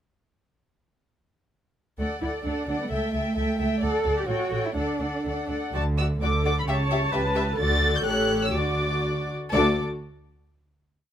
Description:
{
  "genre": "quick classical-period movement for string orchestra",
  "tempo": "118-132 BPM",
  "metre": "2/4",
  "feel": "straight",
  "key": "D major",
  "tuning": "A4 = 440 Hz",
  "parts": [
    { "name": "warm chamber violin section", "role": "melody", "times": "2.0-9.8 s", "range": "F#5 to A6", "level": "-30 LUFS", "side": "left 2 dB", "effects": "none" },
    { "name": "warm chamber violin section", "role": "second line", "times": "2.0-9.8 s", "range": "F#4 to E5", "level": "-31 LUFS", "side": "left 2 dB", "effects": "none" },
    { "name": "warm chamber viola section", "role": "accompaniment", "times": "2.0-9.8 s", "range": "A3 to C#5", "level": "-30 LUFS", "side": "equal", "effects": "none" },
    { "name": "clear chamber double bass section", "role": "bass", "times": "2.0-9.8 s", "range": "A1 to D2", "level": "-29 LUFS", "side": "right 1 dB", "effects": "none" },
    { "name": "dark chamber cello section", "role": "bass", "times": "2.0-9.8 s", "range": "D2 to A4", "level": "-29 LUFS", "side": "right 1 dB", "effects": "none" }
  ],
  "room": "light reverb",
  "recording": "close, detailed microphones",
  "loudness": "-23 LUFS",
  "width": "side -10 dB against mid",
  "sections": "2.0-5.7 A section; 5.7-9.5 A section; 9.5-10.5 final chord",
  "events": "none",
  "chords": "2.0 D; 2.9 A7/C#; 3.8 D; 4.3 A7; 4.8 D; 6.7 A7/C#; 7.6 D; 8.0 A7; 8.5 D"
}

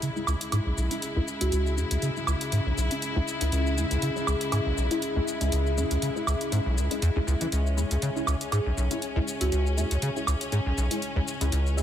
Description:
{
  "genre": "acid house",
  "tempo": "120 BPM",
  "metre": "4/4",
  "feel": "swing 55% on 16ths",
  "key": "C# minor",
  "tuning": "A4 = 440 Hz",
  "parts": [
    { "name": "rich studio string section", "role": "sustained chords", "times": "0.0-11.8 s", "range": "C#3 to E4", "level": "-33 LUFS", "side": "left 2 dB", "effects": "none" },
    { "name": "acid bass, square", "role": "riff", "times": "0.0-11.8 s", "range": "B1 to E3", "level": "-26 LUFS", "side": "equal", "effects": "wide subtle chorus, cassette tape" },
    { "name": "electronic hi-hat, shaker and woodblock", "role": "drums", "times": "0.0-11.8 s", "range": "none", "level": "-33 LUFS", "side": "right 1 dB", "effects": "none" },
    { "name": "warbly tape-like pad", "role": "texture", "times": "0.7-11.8 s", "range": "C#4 to E5", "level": "-35 LUFS", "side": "left 2 dB", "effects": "chorus, built-in reverb" },
    { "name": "filtered dub chord stab", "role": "stabs", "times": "0.2-11.8 s", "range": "G#3 to G#4", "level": "-35 LUFS", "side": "left 2 dB", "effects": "phaser, ensemble chorus, ping-pong delay" },
    { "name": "folk marimba with medium mallets", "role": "melody", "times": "1.4-1.6, 9.4-9.6 s", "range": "F#4", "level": "-34 LUFS", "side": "right 2 dB", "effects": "vintage 12-bit sampler grit, tape echo" }
  ],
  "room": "light reverb",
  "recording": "none",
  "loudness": "-24 LUFS",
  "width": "side -10 dB against mid",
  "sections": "0.0-11.8 A section",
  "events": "filter sweep on acid bass 0.0-11.8",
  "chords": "0.0 C#m"
}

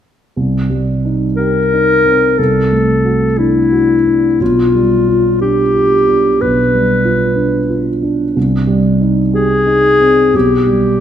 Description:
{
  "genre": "classical, romantic duo for clarinet and grand piano",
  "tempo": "60 BPM",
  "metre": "4/4",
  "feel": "rubato",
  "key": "unclear",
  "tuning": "A4 = 440 Hz",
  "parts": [
    { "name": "dark concert grand piano", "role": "accompaniment", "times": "0.4-11.0 s", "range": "B1 to G4", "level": "-13 LUFS", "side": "right 2 dB", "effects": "none" },
    { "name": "clear clarinet", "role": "melody", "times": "1.4-11.0 s", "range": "E4 to B4", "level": "-12 LUFS", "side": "left 2 dB", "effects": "none" }
  ],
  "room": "moderate scoring stage reverb, RT60 1.8 s",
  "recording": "minimal, uncompressed stereo recording",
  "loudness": "-10 LUFS",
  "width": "side -10 dB against mid",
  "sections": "0.4-11.0 A section",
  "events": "none",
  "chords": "0.4 Cm; 2.4 D7/C; 4.4 G7/B; 8.4 Cm; 10.3 G/B"
}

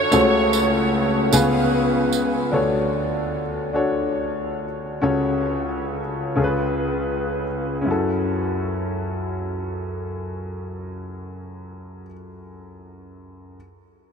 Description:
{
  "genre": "slow gospel",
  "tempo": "38-50 BPM (dotted quarters)",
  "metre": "6/8",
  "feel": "straight",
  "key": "F# minor",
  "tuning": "A4 = 441 Hz",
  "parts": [
    { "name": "warm saxophone section", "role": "melody", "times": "0.0-1.7 s", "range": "F#4 to C#5", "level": "-24 LUFS", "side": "right 4 dB", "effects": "ping-pong delay" },
    { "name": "warm grand piano", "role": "accompaniment", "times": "0.0-13.6 s", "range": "C#2 to G#5", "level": "-21 LUFS", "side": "left 1 dB", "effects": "none" },
    { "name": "tambourine", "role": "percussion", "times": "0.1-2.5 s", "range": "none", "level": "-30 LUFS", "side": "right 10 dB", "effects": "none" }
  ],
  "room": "wet huge ambient reverb, RT60 6.0 s",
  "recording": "dreamy mix soaked in reverb",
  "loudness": "-20 LUFS",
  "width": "side -6 dB against mid",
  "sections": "0.0-2.5 A section; 2.5-7.9 B section; 7.9-11.1 C section",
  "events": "slowing down 2.5-7.9",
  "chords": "0.1 F#m/C#; 1.3 C#7; 2.5 Dmaj7; 5.0 F#m/C#; 6.4 C#7; 7.9 F#m7"
}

